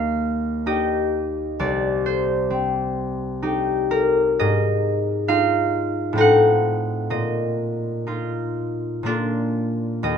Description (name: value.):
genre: classical, solo harp piece.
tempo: 60-69 BPM.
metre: 3/4.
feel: rubato.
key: unclear.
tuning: A4 = 435 Hz.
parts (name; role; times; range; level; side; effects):
concert harp; solo; 0.0-10.2 s; C2 to F#5; -19 LUFS; left 1 dB; none.
room: light reverb.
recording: close, detailed microphones.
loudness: -19 LUFS.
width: side -7 dB against mid.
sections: 0.0-10.2 A section.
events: none.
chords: 0.0 Eb; 1.6 Cm; 4.4 Fm7/Ab; 6.2 Adim7; 7.1 Bbsus4; 9.0 Bb.